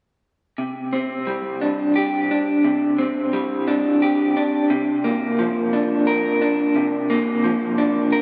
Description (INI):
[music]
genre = rock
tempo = 58 BPM (dotted quarters)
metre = 6/8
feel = straight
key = unclear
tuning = A4 = 440 Hz
[part]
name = electric guitar through a small old amp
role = arpeggios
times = 0.6-8.2 s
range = C3 to Bb4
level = -20 LUFS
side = equal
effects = tremolo, analog delay
[sound]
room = wet lush hall reverb, RT60 2.9 s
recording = dreamy mix soaked in reverb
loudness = -20 LUFS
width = mono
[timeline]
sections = 0.6-8.2 A section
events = none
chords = 0.6 Csus2; 4.7 Bb/C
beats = | 0.59 1.62 | 2.65 3.68 | 4.71 5.74 | 6.77 7.79